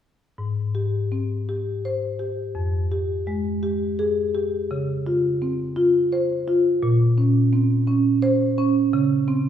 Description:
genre	classical, contemporary piece for solo marimba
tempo	56 BPM (dotted quarters)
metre	6/8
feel	rubato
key	Ab major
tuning	A4 = 440 Hz
part	marimba with medium mallets	solo	0.4-9.5 s	F2 to C5	-20 LUFS	equal	none
room	wet recital hall reverb, RT60 1.5 s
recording	recorded in a church or concert hall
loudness	-20 LUFS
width	side -9 dB against mid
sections	0.4-9.5 A section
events	none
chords	0.4 Abmaj7; 2.5 Fmadd9; 4.7 Dbmaj7; 6.8 Bbmadd9; 8.9 Dbmaj7(no3)

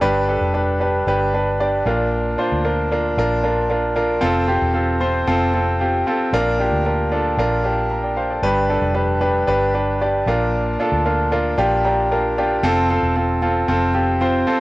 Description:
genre	piano-driven pop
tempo	114 BPM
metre	4/4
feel	straight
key	unclear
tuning	A4 = 440 Hz
part	clear concert grand piano	accompaniment	0.0-14.6 s	G2 to Bb5	-17 LUFS	equal	cassette tape
part	vintage muted fingered electric bass	bass	0.0-14.4 s	E1 to D2	-23 LUFS	equal	none
room	light reverb, studio reverb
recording	home recording on cassette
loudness	-16 LUFS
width	side -19 dB against mid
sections	0.0-14.6 A section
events	grand piano fill 7.6-8.4, 11.6-12.6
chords	0.0 G; 1.9 Bb; 4.2 F; 6.3 Bb; 8.4 G; 10.3 Bb; 12.6 F

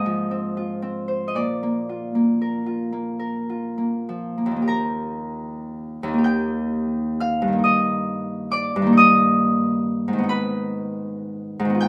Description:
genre	classical, solo harp piece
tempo	32-47 BPM (dotted quarters)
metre	6/8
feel	rubato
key	Eb major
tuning	A4 = 440 Hz
part	Celtic harp	solo	0.0-11.9 s	Eb2 to G6	-22 LUFS	equal	none
room	light reverb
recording	none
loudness	-22 LUFS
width	mono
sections	0.0-4.7 A section; 4.7-11.9 B section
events	none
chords	0.0 Fm/Ab; 1.4 Bb; 4.7 Eb; 7.6 Eb/G; 10.3 Abm

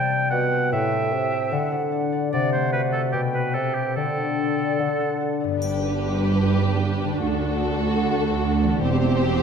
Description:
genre	classical, dramatic, fast romantic movement for symphony orchestra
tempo	149 BPM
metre	4/4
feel	straight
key	G major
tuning	A4 = 438 Hz
part	silver concert flute	second line	0.0-5.4 s	F#5 to G5	-29 LUFS	right 1 dB	none
part	warm oboe	second line	0.0-5.2 s	G4 to G5	-27 LUFS	right 2 dB	none
part	mellow bassoon	accompaniment	0.0-5.4 s	A2 to D3	-27 LUFS	right 4 dB	none
part	concert harp	arpeggios	0.0-9.4 s	G2 to E5	-26 LUFS	left 8 dB	none
part	rich symphonic violin section	melody	5.6-9.4 s	A4 to C5	-30 LUFS	left 4 dB	none
part	warm symphonic violin section	second line	5.6-9.4 s	F#4 to G4	-29 LUFS	equal	none
part	warm symphonic viola section	accompaniment	5.6-9.4 s	C4 to D4	-28 LUFS	right 2 dB	none
part	clear symphonic double bass section	bass	5.6-9.4 s	E1 to D2	-26 LUFS	right 5 dB	none
part	rich symphonic cello section	bass	5.6-9.4 s	D2 to G2	-25 LUFS	right 3 dB	none
part	triangle	percussion	5.6-6.4 s	none	-44 LUFS	left 1 dB	none
room	wet concert hall reverb, RT60 1.8 s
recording	none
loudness	-20 LUFS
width	side -6 dB against mid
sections	0.0-5.6 A section; 5.6-9.4 B section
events	none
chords	0.0 C; 0.7 Am7; 1.5 D; 2.3 D7/C; 3.1 G/B; 4.0 Dsus4; 4.8 D; 5.6 G; 7.2 D; 8.8 C/E

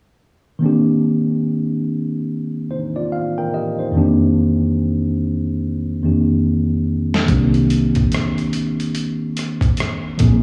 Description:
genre	R&B, neo-soul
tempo	72 BPM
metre	4/4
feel	swing 62% on 16ths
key	C minor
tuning	A4 = 441 Hz
part	tine electric piano	accompaniment	0.6-10.4 s	F2 to G5	-19 LUFS	equal	slapback echo
part	boom bap sampler-style drum kit	drums	7.1-10.4 s	hi-hat, kick drum, rim click, snare drum	-22 LUFS	equal	none
part	vintage muted fingered electric bass	bass	7.3-10.4 s	Bb1 to C2	-21 LUFS	equal	none
room	light reverb, digital ambience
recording	live gig heard through the venue's PA, club reverb, studio ambience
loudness	-19 LUFS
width	mono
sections	0.6-10.4 A section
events	drum fill 6.5-7.3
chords	0.6 Cm9; 4.0 F13sus4; 7.3 Cm9

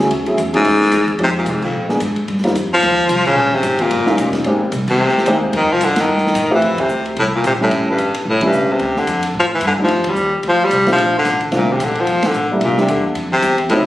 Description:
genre	jazz, small-group swing and bop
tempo	221 BPM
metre	4/4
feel	swing 58% on 8ths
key	F major from 6.6 s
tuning	A4 = 442 Hz
part	warm baby grand piano	accompaniment	0.0-13.9 s	F3 to G#4	-18 LUFS	equal	none
part	upright bass	bass	0.0-13.9 s	F1 to C3	-24 LUFS	equal	none
part	open jazz drum kit	drums	0.1-13.8 s	crash cymbal, hi-hat, kick drum, ride cymbal, snare drum	-26 LUFS	equal	none
part	bright baritone saxophone	melody	0.6-13.8 s	F2 to G3	-15 LUFS	left 1 dB	plate reverb
room	moderate studio reverb, RT60 0.9 s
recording	recorded on a phone in the room, studio reverb, compression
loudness	-13 LUFS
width	side -15 dB against mid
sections	0.0-6.6 A section; 6.6-13.9 B section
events	band accent 1.6, 3.2, 4.9, 6.8, 8.4, 10.0, 12.2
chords	0.1 Dmaj9#11; 1.2 Fm7; 1.7 Bb7b9; 2.3 Eb69; 3.4 Bbsus2; 3.9 Eb9; 4.5 Abmaj7; 5.5 F9; 6.6 Fmaj9; 7.7 A7; 8.8 Dm; 9.9 F13; 11.0 Bbmaj9; 12.1 Gmadd9; 12.6 C7; 13.2 F5

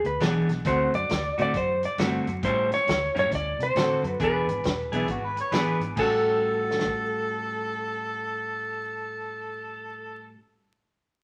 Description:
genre	electric blues shuffle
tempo	135 BPM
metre	4/4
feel	swing 64% on 8ths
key	A mixolydian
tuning	A4 = 440 Hz
part	clean lap steel guitar	melody	0.0-10.3 s	A4 to D5	-28 LUFS	equal	none
part	clean electric guitar	riff	0.0-10.4 s	A2 to A4	-32 LUFS	equal	spring reverb
part	vintage muted fingered electric bass	bass	0.0-10.3 s	E1 to C3	-37 LUFS	equal	none
part	natural country drum kit	drums	0.0-7.0 s	crash cymbal, hi-hat, kick drum, snare drum	-33 LUFS	equal	none
part	warm harmonica	second line	5.0-10.3 s	E4 to C#5	-33 LUFS	equal	overdrive
room	moderate studio reverb, RT60 0.9 s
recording	vinyl crackle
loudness	-26 LUFS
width	mono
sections	0.0-6.0 A section; 6.0-9.5 B section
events	none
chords	0.0 E7; 0.6 D7; 2.4 A7; 3.3 D7; 4.2 E7; 6.0 A6

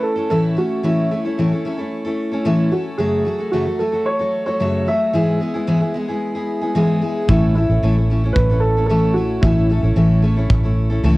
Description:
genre	acoustic pop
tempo	112 BPM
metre	4/4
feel	straight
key	A major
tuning	A4 = 441 Hz
part	warm upright piano	melody	0.0-9.9 s	E4 to E5	-21 LUFS	right 1 dB	cassette tape
part	picked steel-string acoustic guitar	accompaniment	0.0-11.2 s	F#2 to A4	-19 LUFS	left 1 dB	none
part	vintage muted fingered electric bass	bass	7.3-11.2 s	A1 to C#2	-17 LUFS	equal	none
part	kick drum	drums	7.3-10.6 s	none	-19 LUFS	equal	cassette tape
room	light reverb, studio reverb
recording	home recording on cassette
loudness	-16 LUFS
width	side -20 dB against mid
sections	0.0-11.2 A section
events	none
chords	0.0 A; 3.0 F#m; 5.1 E/G#; 7.3 A

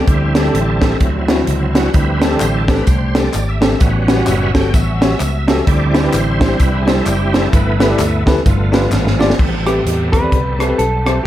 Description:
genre	uptempo gospel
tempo	129 BPM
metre	4/4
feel	swing 60% on 8ths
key	unclear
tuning	A4 = 440 Hz
part	bright tonewheel organ	sustained chords	0.0-11.3 s	F#3 to G5	-21 LUFS	right 2 dB	fast rotary speaker, overdrive, chorus vibrato
part	warm studio string section	sustained chords	0.0-9.4 s	C3 to G4	-27 LUFS	left 2 dB	none
part	bell-like tine electric piano	accompaniment	0.1-11.2 s	G2 to D5	-18 LUFS	left 1 dB	fast stereo tremolo
part	fingered electric bass	bass	0.1-11.2 s	F#1 to E2	-18 LUFS	equal	none
part	crisp fusion drum kit	drums	0.1-11.2 s	crash cymbal, hi-hat, kick drum, rim click, snare drum	-16 LUFS	equal	none
part	tambourine and handclaps	percussion	1.9-9.3 s	none	-30 LUFS	left 4 dB	none
part	hollow-body jazz guitar	melody	9.7-11.3 s	G4 to B4	-19 LUFS	equal	none
room	light reverb, small room ambience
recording	none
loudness	-12 LUFS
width	side -13 dB against mid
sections	0.0-9.4 A section; 9.4-11.3 B section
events	tonewheel organ solo 0.0-9.4; drum fill 8.9-9.4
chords	0.1 D7sus4; 1.0 D9; 1.9 D7sus4; 3.8 A13; 5.7 D9sus4; 7.5 G69; 8.5 G7; 9.4 Am9

